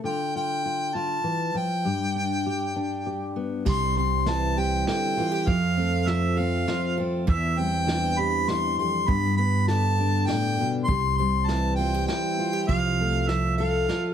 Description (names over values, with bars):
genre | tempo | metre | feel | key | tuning
acoustic folk duo or small band | 100 BPM | 3/4 | straight | C major | A4 = 441 Hz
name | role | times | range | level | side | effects
fingerpicked steel-string acoustic guitar | accompaniment | 0.0-14.1 s | E2 to A4 | -28 LUFS | left 4 dB | none
warm harmonica | melody | 0.1-14.1 s | E5 to C6 | -27 LUFS | equal | none
picked plugged-in steel-string acoustic guitar | arpeggios | 3.7-14.1 s | E3 to A4 | -30 LUFS | right 5 dB | none
upright bass | bass | 3.7-13.8 s | C2 to G2 | -26 LUFS | right 1 dB | none
vintage brush drum kit | drums | 3.7-14.0 s | crash cymbal, hi-hat, kick drum, snare drum | -29 LUFS | right 1 dB | none
room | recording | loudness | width
moderate studio reverb, RT60 0.8 s | heavily compressed radio sound, multiband compression | -22 LUFS | side -9 dB against mid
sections
0.0-3.7 A section; 3.7-14.1 B section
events
none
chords
0.0 Dm; 1.8 G; 3.7 C; 5.5 F; 7.3 Cadd9/E; 9.1 G; 10.9 C; 12.7 F/C